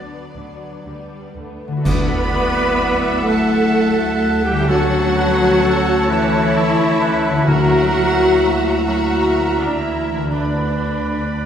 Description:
cinematic, emotional film score for orchestra; 43 BPM (dotted quarters); 6/8; uneven beats, rubato; D major; A4 = 442 Hz
rich studio violin section; melody; 0.0-11.5 s; D5 to B5; -29 LUFS; left 3 dB
clear clarinet; second line; 0.0-11.5 s; D4 to E5; -29 LUFS; equal
rich studio violin section; second line; 0.0-11.5 s; B3 to B5; -28 LUFS; equal
rich studio viola section; accompaniment; 0.0-11.5 s; F#3 to B4; -20 LUFS; equal
concert harp; arpeggios; 0.0-11.5 s; D3 to B4; -25 LUFS; left 3 dB
warm studio cello section; bass; 0.4-11.5 s; D3 to B3; -22 LUFS; right 1 dB
warm studio double bass section; bass; 0.4-11.5 s; D2; -25 LUFS; right 1 dB
clear oboe; second line; 1.8-11.5 s; A4 to F#5; -26 LUFS; right 2 dB
hollow small flute group; second line; 1.9-11.5 s; F#5 to B5; -27 LUFS; left 1 dB
dark French horn section; sustained chords; 1.9-11.5 s; F#3 to E4; -25 LUFS; left 2 dB
clash cymbals and concert bass drum; percussion; 1.9-3.7 s; -25 LUFS; right 1 dB
timpani; percussion; 1.9-8.8 s; D3; -24 LUFS; left 1 dB
wet scoring stage reverb, RT60 1.8 s; heard from further back in the room; -14 LUFS; side -8 dB against mid
0.0-1.9 A section; 1.9-11.5 B section
band accent 1.9-2.8
0.0 Bm/D; 1.9 Dadd9; 4.7 A/D; 7.5 F#7/D; 10.3 Bm/D
0.37 | 1.85 3.28 | 4.68 6.09 | 7.47 8.87 | 10.32

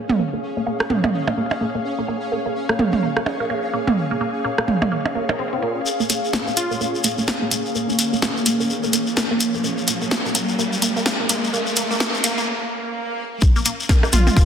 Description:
minimal techno; 127 BPM; 4/4; swing 59% on 16ths; Bb minor; A4 = 440 Hz
ethereal airy pad; texture; 0.0-12.5 s; Bb3 to F5; -26 LUFS; equal; ensemble chorus, built-in reverb, sidechain pumping
pulsing gated texture; texture; 0.0-14.4 s; Db4; -33 LUFS; left 1 dB; chorus, built-in reverb, sidechain pumping
saturated sub bass; bass; 0.1-5.8, 13.4-14.4 s; F1 to Bb2; -26 LUFS; left 1 dB; sidechain pumping, high-pass filter
minimal click drum kit; percussion; 0.1-5.4, 14.0-14.3 s; percussion blips, rim click, toms; -21 LUFS; right 3 dB; soft clipping on snare, dub echo
resonant blip pluck; riff; 0.2-14.4 s; Bb3 to C4; -26 LUFS; right 2 dB; phaser, sidechain pumping, dub echo
shekere; percussion; 5.9-14.4 s; -26 LUFS; left 4 dB
riser and swell; sound effects; 7.8-13.4 s; -27 LUFS; equal
house drum kit; drums; 6.1-14.2 s; hi-hat, snare drum; -22 LUFS; equal; low-pass filter on hats, low-pass filter on snare, low-pass filter on cymbals, low-pass filter on room
plucky unison lead; melody; 6.6-7.0, 14.1-14.4 s; F4; -26 LUFS; left 1 dB; dub echo
electronic kick drum; drums; 13.4-14.4 s; -14 LUFS; equal
wet digital room reverb, RT60 1.2 s; dense, heavily limited modern master, high-pass filter; -18 LUFS; side -8 dB against mid
0.0-5.9 A section; 5.9-13.4 B section; 13.4-14.4 C section
filter sweep on synth arpeggio sound 0.0-5.9, 5.9-13.4; build-up 5.9-13.4; riser 7.8-12.5; break 12.5-13.4; swell 12.5-13.4; drop 13.4-14.4
0.0 Bbm
| 0.19 0.66 1.14 1.61 | 2.08 2.55 3.03 3.50 | 3.97 4.44 4.92 5.39 | 5.86 6.33 6.81 7.28 | 7.75 8.22 8.70 9.17 | 9.64 10.11 10.59 11.06 | 11.53 12.00 12.48 12.95 | 13.42 13.89 14.37

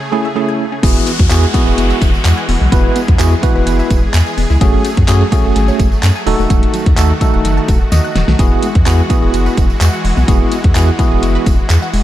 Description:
dance-pop; 127 BPM; 4/4; straight; A4 = 440 Hz
supersaw chords; sustained chords; 0.0-12.0 s; C#3 to G#4; -22 LUFS; equal; sidechain pumping
bell-like tine electric piano; accompaniment; 0.1-11.5 s; A3 to D#5; -17 LUFS; right 1 dB; medium stereo tremolo, sidechain pumping
wide unison pluck; arpeggios; 0.1-12.0 s; F#3 to F#6; -24 LUFS; moving between left 5 dB and right 2 dB; auto-pan, sidechain pumping, tape echo
warm sub bass; bass; 0.8-12.0 s; D#1 to F#2; -13 LUFS; equal; sidechain pumping
pop drum kit; drums; 0.8-12.0 s; crash cymbal, handclaps, hi-hat, kick drum, snare drum; -14 LUFS; equal
tambourine; percussion; 0.8-12.0 s; -32 LUFS; right 7 dB
downlifter; sound effects; 0.8-4.6 s; -24 LUFS; left 2 dB
little or no reverb; dark, warm production; -10 LUFS; side -13 dB against mid
0.8-12.0 A section
break 0.0-0.8; tine electric piano fill 7.7-8.4; drum fill 7.9-8.4
0.0 Amaj7; 0.8 Eadd9; 4.6 F#madd9; 6.3 D#dim; 8.4 Eadd9
0.36 | 0.83 1.30 1.78 2.25 | 2.72 3.19 3.67 4.14 | 4.61 5.08 5.56 6.03 | 6.50 6.97 7.45 7.92 | 8.39 8.86 9.34 9.81 | 10.28 10.75 11.23 11.70

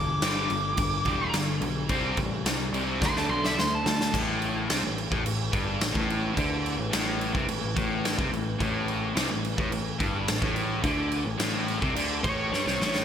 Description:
hard rock; 107 BPM; 4/4; straight; A4 = 438 Hz
high-gain lead guitar; melody; 0.0-4.1, 12.2-13.0 s; C#5 to D6; -30 LUFS; right 1 dB; distortion, digital delay
dark analog pad; sustained chords; 0.0-13.0 s; G3 to E5; -42 LUFS; left 1 dB
overdriven electric guitar; riff; 0.0-13.0 s; G2 to D4; -29 LUFS; left 1 dB
picked electric bass; bass; 0.0-13.0 s; E1 to G2; -33 LUFS; equal
huge arena drum kit; drums; 0.2-13.0 s; crash cymbal, kick drum, snare drum; -29 LUFS; equal; gated reverb
light reverb, small room ambience; bright 1980s-style digital production; -25 LUFS; side -8 dB against mid
0.0-4.1 A section; 4.1-13.0 B section
lead electric guitar solo 0.0-4.1; drum fill 3.0-4.1, 12.5-13.0
0.0 G; 1.9 C5; 3.0 D5; 4.1 A5
0.23 0.79 1.35 | 1.91 2.46 3.02 3.58 | 4.14 4.70 5.26 5.82 | 6.37 6.93 7.49 8.05 | 8.61 9.17 9.73 10.28 | 10.84 11.40 11.96 12.52

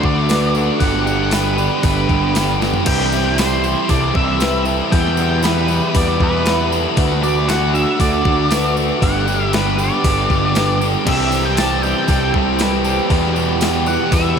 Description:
rock, shoegaze and dream pop; 117 BPM; 4/4; straight; G major; A4 = 441 Hz
octave-fuzz lead guitar; melody; 0.0-14.4 s; B4 to A5; -22 LUFS; equal; distortion, diffuse ambient delay
electric guitar through a small old amp; arpeggios; 0.0-14.4 s; F#4 to B4; -25 LUFS; left 1 dB; wide subtle chorus, diffuse ambient delay
biting overdriven guitar; riff; 0.0-14.4 s; E2 to G4; -21 LUFS; left 7 dB; lush chorus
distorted electric guitar; riff; 0.0-2.9, 11.1-14.4 s; E2 to D4; -26 LUFS; equal
overdriven electric guitar; riff; 0.0-14.4 s; E2 to G4; -21 LUFS; right 8 dB; reverse reverb
fuzz picked electric bass; bass; 0.0-14.3 s; G1 to E2; -20 LUFS; equal; overdrive
clean 12-bit digital drum machine; drums; 0.0-14.2 s; crash cymbal, hi-hat, kick drum, snare drum, toms; -21 LUFS; equal
tambourine; percussion; 0.3-14.2 s; -34 LUFS; right 14 dB
wet cathedral reverb, RT60 5.5 s; dreamy mix soaked in reverb; -14 LUFS; side -7 dB against mid
0.0-2.9 A section; 2.9-14.4 A section
drum fill 2.6
0.0 D; 0.8 G; 2.9 C; 4.9 Em; 7.0 D; 9.0 Gmaj7; 11.1 C; 13.1 Em
0.29 | 0.81 1.32 1.84 2.35 | 2.87 3.38 3.89 4.41 | 4.92 5.43 5.95 6.46 | 6.97 7.49 8.00 8.51 | 9.02 9.53 10.04 10.56 | 11.07 11.58 12.09 12.60 | 13.11 13.62 14.13

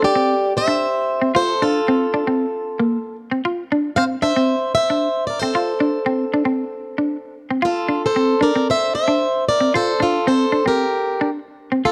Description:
highlife; 114 BPM; 4/4; straight; F major; A4 = 440 Hz
picked plugged-in swing-style acoustic guitar; melody; 0.0-11.9 s; F4 to F5; -21 LUFS; equal
clean electric guitar; accompaniment; 0.0-11.9 s; Bb3 to F4; -22 LUFS; equal; analog chorus
light reverb, small room reverb; -19 LUFS; mono
0.0-11.9 A section
0.3 C; 1.3 F; 2.4 Fadd11; 3.4 F5; 4.5 C; 5.5 F; 6.6 Amadd11; 7.6 F; 8.7 C; 9.7 F; 10.8 Gm
0.30 0.82 | 1.35 1.87 2.40 2.92 | 3.45 3.97 4.49 5.02 | 5.54 6.07 6.59 7.12 | 7.64 8.16 8.69 9.22 | 9.74 10.27 10.80 11.32 | 11.85

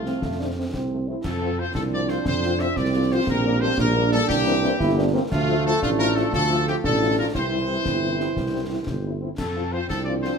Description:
military-style march for wind band; 118 BPM (dotted quarters); 6/8; straight; F major; A4 = 440 Hz
bright trumpet section; melody; 0.0-10.4 s; F4 to E5; -26 LUFS; left 3 dB
warm euphonium; second line; 0.0-10.4 s; A3 to F4; -27 LUFS; right 4 dB
warm trombone section; sustained chords; 0.0-10.4 s; E3 to C4; -32 LUFS; right 1 dB
dark tuba; bass; 0.0-10.3 s; G1 to F2; -25 LUFS; right 2 dB
mellow French horn section; accompaniment; 0.1-10.3 s; E3 to F4; -29 LUFS; left 6 dB
concert snare drum, concert bass drum and clash cymbals; drums; 0.1-10.4 s; -32 LUFS; left 2 dB
moderate large studio reverb, RT60 1.1 s; minimal, uncompressed stereo recording; -20 LUFS; side -6 dB against mid
0.0-1.2 A section; 1.2-10.4 A section
0.0 F; 1.2 F5; 3.3 Gm/Bb; 4.3 C7; 5.3 Dm; 7.3 C; 9.4 F
| 0.22 0.73 | 1.24 1.75 | 2.26 2.77 | 3.28 3.79 | 4.29 4.80 | 5.31 5.82 | 6.33 6.84 | 7.35 7.86 | 8.37 8.88 | 9.39 9.89

